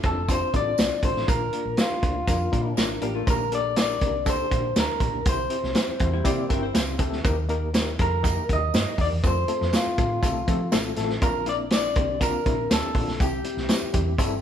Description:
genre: uptempo 1960s-style soul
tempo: 121 BPM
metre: 4/4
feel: straight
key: F major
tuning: A4 = 440 Hz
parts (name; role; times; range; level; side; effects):
- barky reed electric piano; accompaniment; 0.0-14.4 s; G3 to G5; -30 LUFS; left 3 dB; overdrive, fast tremolo
- hollow-body short-scale fingered electric bass; bass; 0.0-14.4 s; F1 to F3; -30 LUFS; equal; none
- vintage drum kit; drums; 0.0-14.3 s; hi-hat, kick drum, snare drum; -25 LUFS; right 1 dB; none
- electric guitar through a small old amp; melody; 0.1-14.4 s; F4 to Eb5; -27 LUFS; left 1 dB; none
- tambourine; percussion; 0.3-14.3 s; none; -41 LUFS; right 5 dB; none
- vintage hollow-body jazz guitar; riff; 2.8-7.2 s; G3 to C5; -32 LUFS; left 3 dB; none
room: moderate stone room reverb, RT60 1.1 s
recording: band playing live in one room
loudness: -21 LUFS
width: side -9 dB against mid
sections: 0.0-14.4 A section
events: reed electric piano fill 6.3-7.2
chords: 0.0 F6; 1.3 Bb; 3.3 Gm/Bb; 5.3 C; 7.2 Eb; 9.2 F; 11.2 Bbadd9; 13.2 C

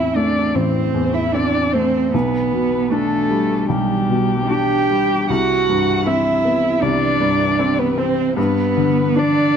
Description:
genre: neoclassical piano and strings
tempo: 77 BPM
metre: 4/4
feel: rubato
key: unclear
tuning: A4 = 440 Hz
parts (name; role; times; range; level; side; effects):
- muted violin; melody; 0.0-9.6 s; G4 to G5; -21 LUFS; left 3 dB; none
- muted cello; second line; 0.0-9.6 s; G3 to G4; -20 LUFS; right 8 dB; none
- felt-muted upright piano; accompaniment; 0.0-9.6 s; A1 to D4; -19 LUFS; left 2 dB; none
room: moderate recital hall reverb, RT60 1.4 s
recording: none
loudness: -15 LUFS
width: side -7 dB against mid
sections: 0.0-9.6 A section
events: none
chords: 0.0 Am; 2.1 Gadd9/B; 5.3 Cmaj7; 8.4 G

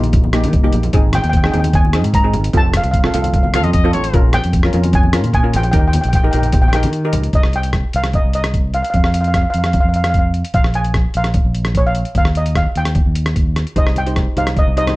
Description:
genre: calypso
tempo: 150 BPM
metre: 4/4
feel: straight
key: unclear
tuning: A4 = 440 Hz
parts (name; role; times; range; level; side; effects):
- steel pan; melody; 0.0-15.0 s; Db5 to Bb5; -20 LUFS; equal; none
- steel pan; accompaniment; 0.0-7.2, 13.8-15.0 s; Bb3 to C5; -21 LUFS; equal; none
- fingered electric bass; bass; 0.0-15.0 s; F1 to Eb3; -17 LUFS; equal; none
- lo-fi sampler-style drum kit; drums; 0.0-15.0 s; hi-hat, kick drum, rim click; -16 LUFS; equal; none
- congas; percussion; 0.0-7.2, 14.0-15.0 s; none; -25 LUFS; left 1 dB; none
- warm trumpet; second line; 3.5-4.2 s; Db5 to F5; -20 LUFS; left 4 dB; none
room: light reverb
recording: dark, warm production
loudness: -13 LUFS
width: side -19 dB against mid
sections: 0.0-7.3 A section; 7.3-15.0 B section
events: drum fill 0.5-0.9; break 6.9-7.3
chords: 0.0 Eb; 0.9 Ab; 2.5 F; 4.1 Bbm; 5.7 Eb; 7.3 Cm; 8.9 N.C.; 10.5 Bb5; 12.2 Eb; 13.8 Cm

